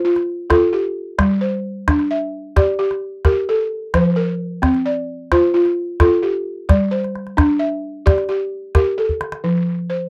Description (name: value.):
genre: west african traditional, West African string and xylophone music.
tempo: 87 BPM (dotted quarters).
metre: 12/8.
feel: straight.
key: F major.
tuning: A4 = 439 Hz.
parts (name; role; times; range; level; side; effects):
balafon; arpeggios; 0.0-10.1 s; F3 to E5; -19 LUFS; equal; none.
calabash; percussion; 0.2-9.4 s; none; -18 LUFS; equal; none.
room: little or no reverb.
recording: dry, close 1970s-style studio recording.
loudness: -18 LUFS.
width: mono.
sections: 0.0-9.4 A section.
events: drum fill 9.1-9.4.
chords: 0.0 F; 1.2 Gm; 3.9 F; 6.7 Gm; 9.4 F.